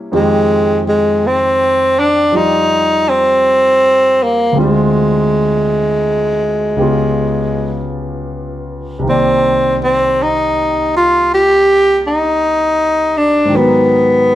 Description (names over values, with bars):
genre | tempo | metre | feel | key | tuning
jazz ballad | 54 BPM | 4/4 | swing 66% on 8ths | unclear | A4 = 442 Hz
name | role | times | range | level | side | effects
clear concert grand piano | accompaniment | 0.0-14.3 s | C2 to D5 | -17 LUFS | equal | none
growling tenor saxophone | melody | 0.2-14.3 s | Ab3 to G4 | -11 LUFS | equal | plate reverb
room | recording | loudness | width
moderate studio reverb, RT60 0.8 s | none | -10 LUFS | side -13 dB against mid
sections
0.0-14.3 A section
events
none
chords
0.1 Fm9; 4.6 Dm7b5; 6.8 Db7#11; 9.0 Cm9; 13.5 Abm7